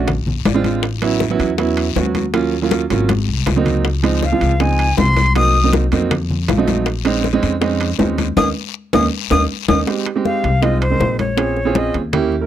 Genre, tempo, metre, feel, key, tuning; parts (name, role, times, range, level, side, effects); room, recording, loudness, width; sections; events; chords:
Afro-Cuban jazz; 159 BPM; 4/4; straight; A4 = 435 Hz
warm baby grand piano; accompaniment; 0.0-12.5 s; F3 to F5; -18 LUFS; right 6 dB
upright bass; bass; 0.0-12.5 s; Ab1 to F2; -19 LUFS; left 1 dB
bongos; percussion; 0.1-12.3 s; -23 LUFS; left 12 dB
congas; percussion; 0.1-12.5 s; -23 LUFS; left 4 dB
guiro; percussion; 0.1-9.8 s; -30 LUFS; left 24 dB
timbales; percussion; 0.1-12.3 s; -25 LUFS; right 4 dB
breathy bright jazz flute; melody; 4.2-5.7, 8.4-12.0 s; C5 to Eb6; -19 LUFS; left 3 dB
light reverb; dry, close 1970s-style studio recording; -14 LUFS; side -11 dB against mid
0.0-9.9 A section; 9.9-12.5 B section
grand piano fill 0.3-0.8, 6.3-6.9, 9.3-9.9; drum fill 2.9-3.9, 8.4-9.9; band accent 8.4-9.9; flute solo 9.9-12.5
0.1 Bb9; 0.8 A69; 2.3 Ebm9; 3.1 Ab9; 3.9 Dbmaj9; 5.4 Cm7b5; 6.1 F7b9; 6.9 Bbm11; 8.4 Eb5; 9.9 Fm7; 11.4 Bbm7